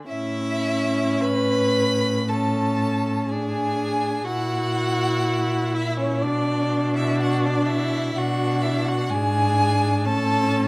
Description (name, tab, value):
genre	classical, slow romantic movement for string quartet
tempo	50-64 BPM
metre	4/4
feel	rubato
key	A major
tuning	A4 = 440 Hz
part	rich viola	accompaniment	0.0-10.7 s	C#4 to E4	-28 LUFS	equal	none
part	clear violin	melody	0.1-10.7 s	C#5 to B5	-30 LUFS	equal	none
part	warm violin	second line	0.1-10.7 s	C#4 to B4	-29 LUFS	equal	none
part	clear cello	bass	0.1-10.7 s	G#2 to B2	-28 LUFS	equal	none
room	moderate recital hall reverb, RT60 1.5 s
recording	close, detailed microphones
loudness	-23 LUFS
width	mono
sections	0.1-10.7 A section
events	none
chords	0.1 A; 4.3 F#7/A#; 6.2 Bm; 8.2 G#m7b5; 10.1 A